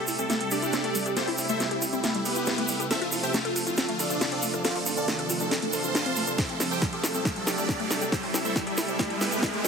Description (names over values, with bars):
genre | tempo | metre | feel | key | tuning
uplifting trance | 138 BPM | 4/4 | straight | A minor | A4 = 441 Hz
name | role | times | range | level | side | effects
supersaw chords | melody | 0.0-9.7 s | B3 to C6 | -29 LUFS | right 2 dB | phaser, sidechain pumping, dub echo
lush unison pad | sustained chords | 0.0-9.7 s | C3 to E5 | -33 LUFS | equal | chorus, sidechain pumping
analog pluck | arpeggios | 0.0-9.7 s | G3 to A4 | -33 LUFS | left 3 dB | chorus, sidechain pumping, ping-pong delay
riser | sound effects | 0.2-9.7 s | none | -36 LUFS | right 2 dB | none
house drum kit | drums | 0.1-9.7 s | hi-hat, snare drum | -30 LUFS | equal | none
egg shaker | percussion | 0.1-9.7 s | none | -34 LUFS | right 2 dB | none
electronic kick drum | drums | 6.4-9.5 s | none | -30 LUFS | equal | none
room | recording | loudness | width
moderate huge ambient reverb, RT60 4.3 s | heavily compressed radio sound, high-pass filter | -24 LUFS | side -6 dB against mid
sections
0.0-9.7 A section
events
build-up 0.0-9.7; drum fill 0.0-9.7; filter sweep on synth arpeggio sound 0.0-9.7; riser 0.2-9.7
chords
0.0 Am7; 2.9 Fmaj7; 4.6 Dm7; 6.4 Am7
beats
0.30 0.73 | 1.17 1.60 2.04 2.47 | 2.91 3.34 3.78 4.21 | 4.64 5.08 5.51 5.95 | 6.38 6.82 7.25 7.69 | 8.12 8.56 8.99 9.43